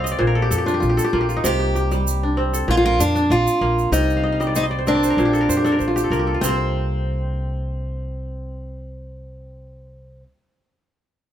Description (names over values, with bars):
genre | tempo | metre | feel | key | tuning
west african traditional, West African string and xylophone music | 97 BPM | 4/4 | straight | unclear | A4 = 440 Hz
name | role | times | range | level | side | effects
kora | arpeggios | 0.0-10.3 s | Bb2 to G5 | -22 LUFS | equal | none
upright bass | bass | 0.0-10.2 s | Bb1 to F2 | -24 LUFS | equal | none
tube shaker | percussion | 0.1-6.7 s | none | -31 LUFS | right 6 dB | none
picked steel-string acoustic guitar | melody | 1.5-10.2 s | C4 to G4 | -21 LUFS | equal | none
room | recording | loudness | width
light reverb | close, detailed microphones | -17 LUFS | side -10 dB against mid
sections
0.0-6.4 A section; 6.4-8.9 B section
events
kora fill 0.0-1.5, 4.2-6.4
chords
0.2 Bb; 1.5 C5; 2.7 Bb; 3.9 Cm; 5.2 Bb; 6.4 N.C.